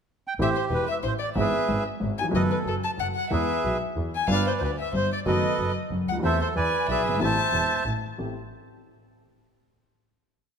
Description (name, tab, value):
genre	tango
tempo	184 BPM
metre	3/4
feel	rubato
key	unclear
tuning	A4 = 439 Hz
part	bandoneon	melody	0.3-7.8 s	G4 to A5	-28 LUFS	right 4 dB	none
part	warm violin	second line	0.4-7.8 s	A4 to A5	-29 LUFS	left 8 dB	none
part	warm upright piano	accompaniment	0.4-8.3 s	E1 to A4	-29 LUFS	left 2 dB	none
part	clear double bass	bass	0.4-8.3 s	E1 to E2	-30 LUFS	right 2 dB	none
room	moderate concert hall reverb, RT60 2.3 s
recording	none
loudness	-23 LUFS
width	side -6 dB against mid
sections	0.0-0.4 pickup bar; 0.4-8.2 A section; 8.2-9.2 final chord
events	none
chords	0.4 Am7; 1.4 E/G#; 2.3 B7/F#; 3.3 E; 4.3 G7; 5.3 B7/F#; 6.2 Am/E; 6.6 E7; 7.2 Am7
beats	0.06 | 0.39 0.72 1.04 | 1.37 1.69 2.02 | 2.34 2.66 2.99 | 3.31 3.64 3.96 | 4.29 4.62 4.94 | 5.27 5.59 5.92 | 6.24 6.56 6.89 | 7.21 7.54 7.87 | 8.19